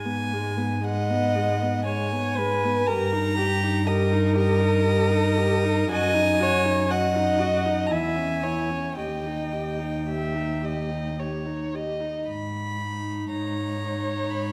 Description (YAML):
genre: classical, slow romantic movement for string quartet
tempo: 54-61 BPM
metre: 3/4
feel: rubato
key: G# minor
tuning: A4 = 437 Hz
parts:
  - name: rich violin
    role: melody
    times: 0.0-14.5 s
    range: D#5 to B5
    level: -32 LUFS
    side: equal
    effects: none
  - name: dark viola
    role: accompaniment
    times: 0.0-14.5 s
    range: G#3 to G4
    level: -32 LUFS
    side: equal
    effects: none
  - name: warm cello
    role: bass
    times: 0.0-14.5 s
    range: D#2 to G#2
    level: -29 LUFS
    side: equal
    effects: none
  - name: dark violin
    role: second line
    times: 0.8-14.5 s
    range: G4 to E5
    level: -29 LUFS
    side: equal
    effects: none
room: wet recital hall reverb, RT60 1.7 s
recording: none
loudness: -25 LUFS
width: mono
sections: 0.0-14.5 A section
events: none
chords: 0.0 G#m; 2.9 D#/G; 5.9 D#m/F#; 7.9 C#m/E; 9.0 D#; 12.3 G#m